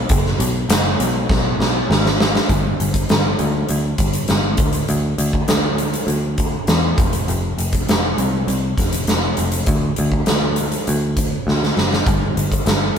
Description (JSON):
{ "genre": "classic rock", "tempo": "100 BPM", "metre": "4/4", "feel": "straight", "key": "unclear", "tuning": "A4 = 440 Hz", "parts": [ { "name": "picked electric bass", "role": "bass", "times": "0.0-12.9 s", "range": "F1 to E2", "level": "-20 LUFS", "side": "equal", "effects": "none" }, { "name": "huge arena drum kit", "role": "drums", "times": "0.1-12.8 s", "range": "hi-hat, kick drum, snare drum", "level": "-18 LUFS", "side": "equal", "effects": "none" } ], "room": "moderate stone room reverb, RT60 1.2 s", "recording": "band playing live in one room", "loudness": "-16 LUFS", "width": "side -7 dB against mid", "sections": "0.0-2.5 A section; 2.5-13.0 B section", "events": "drum fill 1.3-2.5, 11.5-12.1", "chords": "none", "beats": "| 0.10 0.69 1.29 1.89 | 2.49 3.09 3.69 4.29 | 4.89 5.49 6.08 6.68 | 7.28 7.88 8.48 9.08 | 9.67 10.27 10.87 11.47 | 12.07 12.67" }